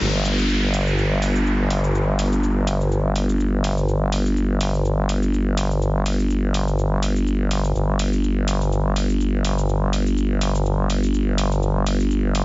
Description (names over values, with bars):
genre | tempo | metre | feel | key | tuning
bass house | 124 BPM | 4/4 | swing 55% on 16ths | unclear | A4 = 440 Hz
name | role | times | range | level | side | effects
vowel-sweep wobble bass | bass | 0.0-12.4 s | G1 | -19 LUFS | equal | chorus, tube saturation
big-room dance drum kit | drums | 0.0-12.4 s | crash cymbal, hi-hat, shaker | -30 LUFS | equal | none
downlifter | sound effects | 0.0-3.9 s | none | -28 LUFS | equal | none
room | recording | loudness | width
little or no reverb | heavily compressed radio sound, multiband compression, nothing above 7.6 kHz | -18 LUFS | side -22 dB against mid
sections
0.0-12.4 A section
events
none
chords
none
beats
| 0.01 0.49 0.98 1.46 | 1.95 2.43 2.91 3.40 | 3.88 4.37 4.85 5.33 | 5.82 6.30 6.79 7.27 | 7.75 8.24 8.72 9.21 | 9.69 10.17 10.66 11.14 | 11.62 12.11